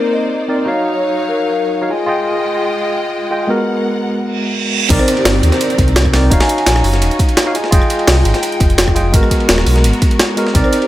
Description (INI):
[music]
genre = liquid drum and bass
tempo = 170 BPM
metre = 4/4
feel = straight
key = unclear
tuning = A4 = 439 Hz
[part]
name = tine electric piano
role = accompaniment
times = 0.0-10.9 s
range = Ab3 to Ab5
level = -17 LUFS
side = equal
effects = medium tremolo, dub echo
[part]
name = clear symphonic string section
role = sustained chords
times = 0.0-10.9 s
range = Eb3 to G5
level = -23 LUFS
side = left 1 dB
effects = sidechain pumping
[part]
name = vibraphone with soft mallets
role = melody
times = 0.1-1.6, 5.0-6.7, 10.6-10.9 s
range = G4 to Ab5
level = -20 LUFS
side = left 1 dB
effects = digital delay
[part]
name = reverse cymbal and downlifter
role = sound effects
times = 4.3-7.7 s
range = none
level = -21 LUFS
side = right 4 dB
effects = none
[part]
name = sub bass with octave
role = bass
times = 4.9-10.6 s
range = Eb1 to Eb2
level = -14 LUFS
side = equal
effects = tube saturation
[part]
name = breakbeat sampler-style drum kit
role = drums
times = 4.9-10.9 s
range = hi-hat, ride cymbal, snare drum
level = -21 LUFS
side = equal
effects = high-pass filter on cymbals, high-pass filter on snare, high-pass filter on hats, high-pass filter on room
[part]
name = electronic kick drum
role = drums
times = 4.9-10.6 s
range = none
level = -14 LUFS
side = equal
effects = none
[part]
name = jungle sampler-style drum kit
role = drums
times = 4.9-10.8 s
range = crash cymbal, hi-hat, rim click, snare drum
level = -18 LUFS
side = equal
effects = none
[sound]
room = light reverb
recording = none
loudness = -12 LUFS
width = side -14 dB against mid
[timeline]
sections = 0.0-4.9 A section; 4.9-10.9 B section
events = reverse cymbal 4.3-4.9; drop 4.9-10.9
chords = 0.0 Cm9; 0.7 Ebm9; 1.9 Fm9; 3.5 Abm9; 4.9 Cm9; 6.3 Ebm9; 7.5 Fm9; 9.1 Abm9